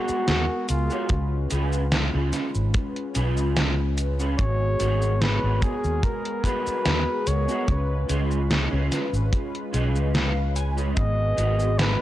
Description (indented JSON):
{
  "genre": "vaporwave",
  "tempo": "73 BPM",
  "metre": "4/4",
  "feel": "swing 53% on 16ths",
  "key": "unclear",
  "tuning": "A4 = 440 Hz",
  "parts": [
    { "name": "warm flugelhorn", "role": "melody", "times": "0.0-12.0 s", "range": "E#4 to D#5", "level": "-29 LUFS", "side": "equal", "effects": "tape echo" },
    { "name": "mellow synth brass", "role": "accompaniment", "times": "0.0-12.0 s", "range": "G#3 to B4", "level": "-30 LUFS", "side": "left 1 dB", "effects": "analog chorus, tape echo" },
    { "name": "electric guitar at the edge of break-up", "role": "riff", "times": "0.0-11.7 s", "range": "B3 to G#5", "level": "-32 LUFS", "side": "right 2 dB", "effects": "ensemble chorus, tape echo" },
    { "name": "fretless electric bass", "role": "bass", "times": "0.1-11.9 s", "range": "G#1 to D#2", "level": "-24 LUFS", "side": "equal", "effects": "wide subtle chorus" },
    { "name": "gated 80s digital drum machine", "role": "drums", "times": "0.1-12.0 s", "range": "cabasa, hi-hat, snare drum", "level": "-26 LUFS", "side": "equal", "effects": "gated reverb, gated reverb snare, overdrive, vintage 12-bit sampler grit" },
    { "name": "kick drum", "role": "drums", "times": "1.1-11.1 s", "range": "none", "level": "-24 LUFS", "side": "equal", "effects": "vintage 12-bit sampler grit" }
  ],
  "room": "little or no reverb",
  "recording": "dry, gritty hardware recording, cassette tape",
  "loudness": "-21 LUFS",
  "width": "side -14 dB against mid",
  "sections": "0.0-12.0 A section",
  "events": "clean electric guitar fill 9.3-11.0",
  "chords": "0.0 G#m9; 1.1 C#7; 4.4 G#m9; 7.7 C#7; 11.0 G#m9"
}